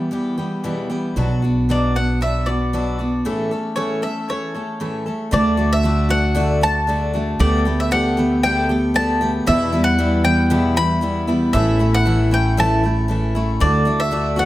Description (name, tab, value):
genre	acoustic folk duo or small band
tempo	116 BPM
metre	4/4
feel	straight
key	D major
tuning	A4 = 440 Hz
part	picked steel-string acoustic guitar	accompaniment	0.0-14.5 s	E2 to A4	-20 LUFS	left 1 dB	none
part	upright bass	bass	1.2-14.5 s	A1 to E2	-20 LUFS	right 1 dB	none
part	bowl-back mandolin	melody	1.7-14.5 s	C#5 to B5	-22 LUFS	equal	tape echo
room	moderate large studio reverb, RT60 1.0 s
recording	none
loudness	-16 LUFS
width	side -15 dB against mid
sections	0.0-5.3 A section; 5.3-14.5 B section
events	break 3.2-5.3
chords	0.0 Em; 1.2 Bm; 3.2 A; 5.3 D; 7.4 Gadd9/D; 9.5 Em; 11.5 A; 13.6 D